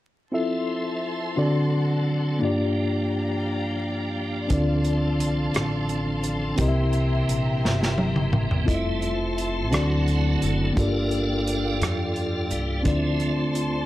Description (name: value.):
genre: slow gospel.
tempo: 58 BPM (dotted quarters).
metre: 6/8.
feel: straight.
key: F major.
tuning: A4 = 439 Hz.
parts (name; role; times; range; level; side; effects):
mellow tine electric piano; accompaniment; 0.3-13.9 s; G2 to E5; -24 LUFS; left 1 dB; medium stereo tremolo.
tonewheel organ; sustained chords; 0.3-13.9 s; E3 to E5; -30 LUFS; right 2 dB; slow rotary speaker, overdrive, chorus vibrato.
warm studio string section; sustained chords; 0.3-13.9 s; C5 to C6; -34 LUFS; equal; none.
upright bass; bass; 4.5-13.9 s; F1 to F2; -28 LUFS; equal; none.
modern studio drum kit; drums; 4.5-13.7 s; hi-hat, kick drum, rim click, snare drum, toms; -27 LUFS; equal; none.
room: light reverb, small room ambience.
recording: vinyl crackle.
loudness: -22 LUFS.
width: side -15 dB against mid.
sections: 0.3-8.7 A section; 8.7-13.9 B section.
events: drum fill 7.6-8.7; tonewheel organ solo 8.7-13.9.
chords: 0.3 Fmaj7; 1.4 D7; 2.4 Gm7; 4.5 Dm7; 6.6 C7; 8.7 Fmaj7; 9.7 D7; 10.8 Gm7; 12.9 Dm7.